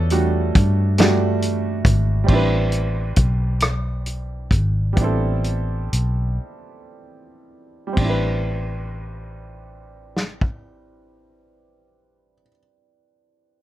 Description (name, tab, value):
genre	slow six-eight R&B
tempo	37-46 BPM (dotted quarters)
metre	6/8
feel	straight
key	A dorian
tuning	A4 = 439 Hz
part	clear baby grand piano	accompaniment	0.0-13.6 s	G3 to D5	-24 LUFS	right 3 dB	plate reverb
part	vintage muted fingered electric bass	bass	0.0-12.4 s	G#1 to G2	-20 LUFS	equal	none
part	warm soul drum kit	drums	0.1-10.7 s	crash cymbal, hi-hat, kick drum, rim click, snare drum	-20 LUFS	equal	none
room	little or no reverb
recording	dark, warm production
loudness	-18 LUFS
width	side -14 dB against mid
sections	0.0-2.3 A section; 2.3-8.0 B section; 8.0-11.2 C section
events	grand piano solo 0.0-2.3; slowing down 2.3-8.0; break 6.4-8.0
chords	0.0 Em11; 2.3 Am11